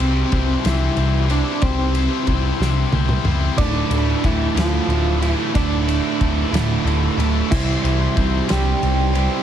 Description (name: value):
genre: quiet-loud alternative rock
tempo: 61 BPM (dotted quarters)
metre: 6/8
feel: straight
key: unclear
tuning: A4 = 440 Hz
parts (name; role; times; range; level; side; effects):
- electric guitar through a small old amp; melody; 0.0-9.4 s; E3 to D5; -24 LUFS; right 2 dB; tremolo, slapback echo
- high-gain distorted guitar; riff; 0.0-9.4 s; D2 to C5; -27 LUFS; left 1 dB; distortion
- tight distorted guitar; riff; 0.0-9.4 s; D2 to C5; -27 LUFS; left 12 dB; distortion
- overdriven picked electric bass; bass; 0.0-9.3 s; D1 to D2; -20 LUFS; equal; none
- loose indie drum kit; drums; 0.0-9.3 s; crash cymbal, kick drum, ride cymbal, snare drum, toms; -24 LUFS; equal; none
- crunchy overdriven guitar; riff; 3.6-9.4 s; D2 to C5; -24 LUFS; right 12 dB; none
room: light reverb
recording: heavily compressed radio sound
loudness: -16 LUFS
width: side -10 dB against mid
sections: 0.0-9.4 A section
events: drum fill 2.6-3.6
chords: 0.0 C; 3.6 Dmadd9; 7.5 C